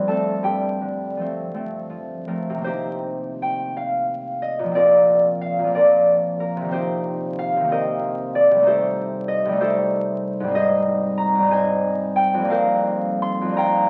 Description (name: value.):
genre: classical, solo harp piece.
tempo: 50-64 BPM (dotted quarters).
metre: 6/8.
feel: rubato.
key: unclear.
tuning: A4 = 439 Hz.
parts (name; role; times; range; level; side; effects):
concert harp; solo; 0.0-13.9 s; F2 to F6; -21 LUFS; equal; none.
room: wet stone room reverb, RT60 1.4 s.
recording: very old 78 rpm record, vinyl crackle.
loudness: -21 LUFS.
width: mono.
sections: 0.0-2.6 A section; 2.6-13.9 B section.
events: none.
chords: 0.4 G9sus4; 2.6 Cm7; 4.7 Bbadd9; 6.7 Cm7; 8.7 Cm6; 10.6 Abmaj7; 12.5 F9sus4.